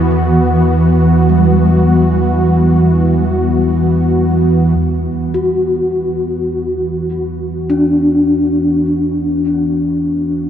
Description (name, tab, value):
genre	dark ambient drone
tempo	free time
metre	none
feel	none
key	E minor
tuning	A4 = 439 Hz
part	sweeping resonant pad	sustained chords	0.0-10.5 s	E3 to F#4	-16 LUFS	right 1 dB	chorus
part	deep rumbling drone	drone	0.0-10.5 s	E2 to E3	-15 LUFS	right 1 dB	built-in reverb, phaser
part	gamelan-type bronze metallophone	arpeggios	0.1-10.5 s	E3 to F#4	-16 LUFS	left 2 dB	diffuse ambient delay
room	wet huge ambient reverb, RT60 7.8 s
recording	none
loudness	-11 LUFS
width	side -9 dB against mid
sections	0.0-4.8 A section; 4.8-10.5 B section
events	filter sweep on synth drone 4.8-10.5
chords	0.0 E5